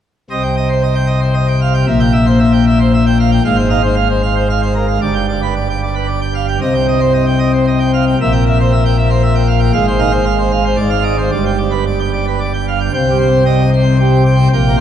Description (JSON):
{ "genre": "classical, organ toccata", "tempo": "114 BPM", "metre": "3/4", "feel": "straight", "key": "C minor", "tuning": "A4 = 440 Hz", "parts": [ { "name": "pipe organ, plenum", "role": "solo", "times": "0.3-14.8 s", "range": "G1 to G5", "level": "-11 LUFS", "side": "equal", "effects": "none" } ], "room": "wet church reverb, RT60 3.5 s", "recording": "dark, warm production", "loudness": "-11 LUFS", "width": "side -9 dB against mid", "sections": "0.3-12.9 A section; 12.9-14.8 A section", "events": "none", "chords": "0.3 Cm; 1.9 C7/Bb; 3.4 Fm/Ab; 5.0 G; 6.6 Cm; 8.2 C7/Bb; 9.7 Fm/Ab; 10.8 Dm7b5/Ab; 11.3 G; 12.9 Cm", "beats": "| 0.30 0.83 1.36 | 1.89 2.41 2.93 | 3.45 3.96 4.49 | 5.01 5.54 6.08 | 6.61 7.14 7.67 | 8.19 8.71 9.23 | 9.75 10.27 10.79 | 11.33 11.87 12.40 | 12.94 13.47 14.00 | 14.52" }